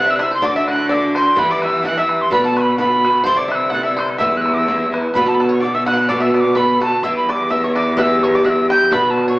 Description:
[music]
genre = celtic folk, Celtic polka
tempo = 127 BPM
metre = 2/4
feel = swing 54% on 8ths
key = E minor, B minor from 5.1 s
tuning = A4 = 438 Hz
[part]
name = mellow tin whistle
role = melody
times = 0.0-9.4 s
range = A5 to G6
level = -17 LUFS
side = right 1 dB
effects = none
[part]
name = bluegrass banjo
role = second line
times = 0.0-9.4 s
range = A4 to G5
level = -24 LUFS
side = right 1 dB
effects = none
[part]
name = Irish bouzouki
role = accompaniment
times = 0.0-9.4 s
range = G2 to G4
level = -19 LUFS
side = equal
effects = none
[part]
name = clear cello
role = bass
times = 0.0-9.4 s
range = E2 to E3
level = -22 LUFS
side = equal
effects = none
[part]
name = bodhran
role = percussion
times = 0.2-9.3 s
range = none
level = -28 LUFS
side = equal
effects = none
[sound]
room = wet studio reverb, RT60 0.9 s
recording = band playing live in one room, AM radio sound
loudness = -14 LUFS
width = side -20 dB against mid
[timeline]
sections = 0.0-5.1 A section; 5.1-9.4 B section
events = none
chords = 0.4 Dadd9; 1.4 Em; 2.3 Bm; 3.3 Cadd9; 4.2 Em; 5.1 Bm; 7.0 Em

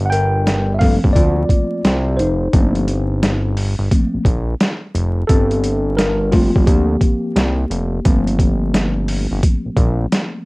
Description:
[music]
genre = hip hop, jazz-hop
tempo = 87 BPM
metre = 4/4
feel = swing 66% on 16ths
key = G minor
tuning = A4 = 440 Hz
[part]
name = fat analog bass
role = bass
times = 0.0-10.1 s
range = F1 to D2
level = -18 LUFS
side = equal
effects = none
[part]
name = mellow tine electric piano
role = accompaniment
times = 0.1-10.5 s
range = F3 to G5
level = -19 LUFS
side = left 1 dB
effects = medium stereo tremolo, plate reverb
[part]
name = boom bap sampler-style drum kit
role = drums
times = 0.1-10.3 s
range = hi-hat, kick drum, snare drum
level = -16 LUFS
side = equal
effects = overdrive, vintage 12-bit sampler grit
[sound]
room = light reverb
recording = home recording on cassette, vinyl crackle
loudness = -14 LUFS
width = side -24 dB against mid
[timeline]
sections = 0.0-10.5 A section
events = tine electric piano solo 0.0-10.5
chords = 0.0 Gm11

